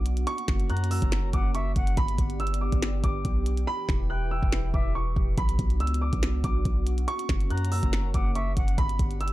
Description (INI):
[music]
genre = hip hop, trap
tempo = 141 BPM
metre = 4/4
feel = half-time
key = unclear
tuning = A4 = 439 Hz
[part]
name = dark baby grand piano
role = melody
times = 0.0-9.3 s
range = B5 to F#6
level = -34 LUFS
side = right 2 dB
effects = ping-pong delay
[part]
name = sweeping resonant pad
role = sustained chords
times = 0.0-9.3 s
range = E3 to B4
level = -35 LUFS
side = right 1 dB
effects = lush chorus
[part]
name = long sustained 808-style bass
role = bass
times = 0.0-9.3 s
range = E1 to F#2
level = -27 LUFS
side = equal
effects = none
[part]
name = minimal click drum kit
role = drums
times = 0.1-9.3 s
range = finger snaps, hi-hat, kick drum, snare drum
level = -27 LUFS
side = equal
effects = none
[part]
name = reedy silver concert flute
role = second line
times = 0.7-4.9, 7.5-8.8 s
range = E5 to A#5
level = -39 LUFS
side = left 5 dB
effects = ping-pong delay
[sound]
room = little or no reverb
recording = dark, warm production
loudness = -24 LUFS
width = side -16 dB against mid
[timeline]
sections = 0.0-9.3 A section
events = hi-hats muted 3.7-5.4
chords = 0.3 F#; 2.0 G; 3.7 Em; 5.4 Bm; 7.1 F#; 8.8 G